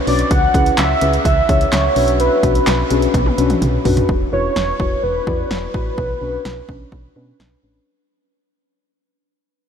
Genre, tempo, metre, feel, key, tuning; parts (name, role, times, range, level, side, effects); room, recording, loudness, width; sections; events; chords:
synth-pop; 127 BPM; 4/4; straight; B dorian; A4 = 440 Hz
warm velvety synth lead; melody; 0.1-7.4 s; B4 to F#5; -19 LUFS; right 1 dB; chorus, low-pass filter, tape echo
muted felt-like synth keys; accompaniment; 0.1-7.9 s; C#4 to D5; -21 LUFS; left 4 dB; chorus, low-pass filter
solid FM bass; bass; 0.1-7.8 s; E1 to B2; -21 LUFS; equal
punchy analog drum machine; drums; 0.1-7.5 s; handclaps, hi-hat, kick drum, snare drum, toms; -20 LUFS; equal; overdrive
moderate huge ambient reverb, RT60 7.2 s; dreamy mix soaked in reverb; -14 LUFS; side -7 dB against mid
0.0-4.1 A section; 4.1-7.9 B section
drum fill 3.1-4.1; fade-out 4.1-7.9; filter sweep 4.1-7.9
0.3 C#m7; 2.0 Bmadd9; 4.1 Esus2; 6.0 Bmadd9